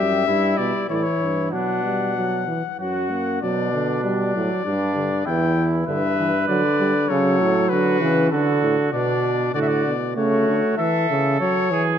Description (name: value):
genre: classical, imitative canzona for brass ensemble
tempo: 97 BPM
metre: 3/4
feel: straight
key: B minor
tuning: A4 = 440 Hz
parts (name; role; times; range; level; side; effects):
- clear cornet; melody; 0.0-11.8 s; A4 to G5; -24 LUFS; left 10 dB; none
- warm trumpet; second line; 0.0-12.0 s; D4 to B4; -27 LUFS; right 6 dB; none
- mellow trombone; accompaniment; 0.0-12.0 s; B2 to A#3; -23 LUFS; right 2 dB; none
- clear bass trombone; bass; 0.0-10.6 s; E2 to D3; -24 LUFS; right 1 dB; none
room: moderate concert hall reverb, RT60 1.8 s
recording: none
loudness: -18 LUFS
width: side -9 dB against mid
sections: 0.0-3.4 A section; 3.4-10.8 B section; 10.8-12.0 C section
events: none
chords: 0.0 C#dim; 1.5 Bm; 2.8 F#; 3.4 Bm; 4.7 G5; 5.3 Em; 6.5 Bm/D; 7.1 F#m; 8.3 D; 8.9 Bm; 10.2 F#m/C#; 10.8 A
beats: 0.28 0.89 | 1.53 2.16 2.80 | 3.43 4.05 4.66 | 5.27 5.88 6.49 | 7.09 7.70 8.31 | 8.92 9.54 10.15 | 10.78 11.40